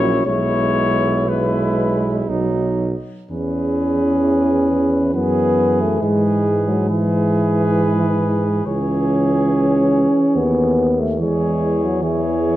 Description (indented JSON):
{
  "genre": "classical, hymn-like piece for brass band",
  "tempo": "57-73 BPM",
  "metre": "3/4",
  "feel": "rubato",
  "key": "E major",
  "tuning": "A4 = 440 Hz",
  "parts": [
    { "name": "mellow cornet", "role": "melody", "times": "0.0-12.6 s", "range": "B4 to C#5", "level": "-26 LUFS", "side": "left 6 dB", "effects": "none" },
    { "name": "mellow flugelhorn", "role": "second line", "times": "0.0-12.6 s", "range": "D#4 to G#4", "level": "-24 LUFS", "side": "right 5 dB", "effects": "none" },
    { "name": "dark trombone", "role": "accompaniment", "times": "0.0-12.6 s", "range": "E3 to G#3", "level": "-24 LUFS", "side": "right 2 dB", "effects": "none" },
    { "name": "warm euphonium", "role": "accompaniment", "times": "0.0-12.6 s", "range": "E3 to C#4", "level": "-19 LUFS", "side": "equal", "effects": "none" },
    { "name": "warm tuba", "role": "bass", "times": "0.0-12.6 s", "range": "A#1 to G#2", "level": "-21 LUFS", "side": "equal", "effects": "none" }
  ],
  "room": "moderate recital hall reverb, RT60 1.4 s",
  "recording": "worn, warbling old tape, cassette tape, warbly pitch drift",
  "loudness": "-15 LUFS",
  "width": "side -14 dB against mid",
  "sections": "0.0-3.3 A section; 3.3-12.6 B section",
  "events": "none",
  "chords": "0.3 E/B; 2.3 B; 3.3 E; 6.0 E/G#; 8.7 C#m; 11.2 C#m/E"
}